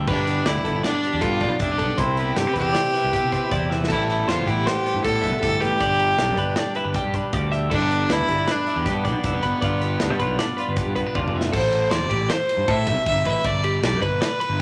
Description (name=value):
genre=math rock and midwest emo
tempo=157 BPM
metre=5/4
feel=straight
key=unclear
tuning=A4 = 440 Hz
part: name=twelve-string electric guitar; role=accompaniment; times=0.0-11.5 s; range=G2 to G4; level=-31 LUFS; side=equal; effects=spring reverb
part: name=twelve-string electric guitar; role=arpeggios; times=0.0-14.6 s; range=G4 to E5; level=-30 LUFS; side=equal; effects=none
part: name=fuzz fingered electric bass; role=bass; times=0.0-14.6 s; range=F1 to C3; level=-28 LUFS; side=equal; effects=overdrive
part: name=rich fiddle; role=melody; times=0.1-14.6 s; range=B3 to E5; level=-26 LUFS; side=equal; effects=none
part: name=modern studio drum kit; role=drums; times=0.1-14.5 s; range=crash cymbal, hi-hat, kick drum, ride cymbal, snare drum, toms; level=-30 LUFS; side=equal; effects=none
room=moderate large studio reverb, RT60 1.1 s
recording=none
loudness=-22 LUFS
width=mono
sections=0.0-11.5 A section; 11.5-14.6 B section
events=drum fill 3.7, 11.1-11.5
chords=0.1 G9; 2.0 Cmaj7; 3.9 Am9; 5.8 Em7/G; 7.7 G7; 11.5 Am7; 13.4 Em7/G (rootless)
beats=| 0.08 0.46 0.84 1.22 1.60 | 1.98 2.37 2.75 3.13 3.51 | 3.89 4.27 4.66 5.04 5.42 | 5.80 6.18 6.56 6.95 7.33 | 7.71 8.09 8.47 8.86 9.24 | 9.62 10.00 10.38 10.77 11.15 | 11.53 11.91 12.30 12.68 13.06 | 13.44 13.83 14.21 14.59